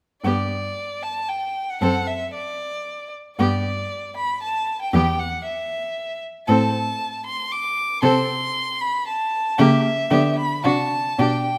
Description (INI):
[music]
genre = quick classical-period movement for string quartet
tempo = 115 BPM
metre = 3/4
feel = rubato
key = G major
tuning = A4 = 439 Hz
[part]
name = rich violin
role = melody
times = 0.2-11.6 s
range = D5 to D6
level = -27 LUFS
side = equal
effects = none
[part]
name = warm violin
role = second line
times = 0.2-11.4 s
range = F#4 to A4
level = -27 LUFS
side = equal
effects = none
[part]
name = rich viola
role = accompaniment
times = 0.2-11.4 s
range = A#3 to D4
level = -26 LUFS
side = equal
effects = none
[part]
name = warm cello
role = bass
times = 0.2-11.6 s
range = E2 to D3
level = -24 LUFS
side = equal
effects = none
[sound]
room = moderate recital hall reverb, RT60 1.7 s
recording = none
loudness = -22 LUFS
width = mono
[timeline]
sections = 0.2-11.6 A section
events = none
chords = 0.2 G; 1.8 D7/F#; 3.4 G; 4.9 Em; 6.5 Am; 8.0 Am/C; 9.6 C#dim7; 10.1 G/D; 10.6 D7/C